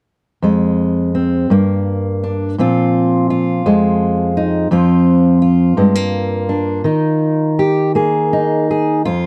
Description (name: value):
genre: folk, solo fingerstyle acoustic guitar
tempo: 56 BPM (dotted quarters)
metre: 6/8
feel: rubato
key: F dorian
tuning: A4 = 440 Hz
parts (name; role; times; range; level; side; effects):
- fingerpicked steel-string acoustic guitar; solo; 0.4-9.3 s; F2 to Ab4; -15 LUFS; equal; none
room: light reverb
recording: dry, close 1970s-style studio recording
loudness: -15 LUFS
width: mono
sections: 0.4-9.1 A section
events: none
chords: 0.4 Fm; 1.5 Gm; 2.6 Bbsus2; 3.7 Fm7; 4.7 F5; 5.8 Gm7; 6.8 Eb